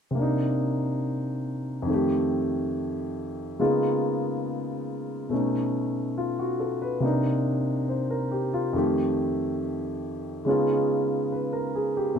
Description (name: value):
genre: solo jazz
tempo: 70 BPM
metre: 4/4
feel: swing 67% on 8ths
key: unclear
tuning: A4 = 440 Hz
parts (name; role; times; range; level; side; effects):
- warm concert grand piano; solo; 0.1-12.2 s; F2 to C5; -24 LUFS; equal; none
room: moderate stone room reverb, RT60 1.1 s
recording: band playing live in one room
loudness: -24 LUFS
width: side -7 dB against mid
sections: 0.2-12.2 A section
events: none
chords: 0.2 Cm9; 1.9 F9; 3.6 Db13; 5.3 B9; 7.0 Cm9; 8.7 F9; 10.5 Db9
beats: | 0.16 1.02 1.88 2.74 | 3.60 4.46 5.31 6.17 | 7.03 7.89 8.74 9.60 | 10.46 11.31 12.17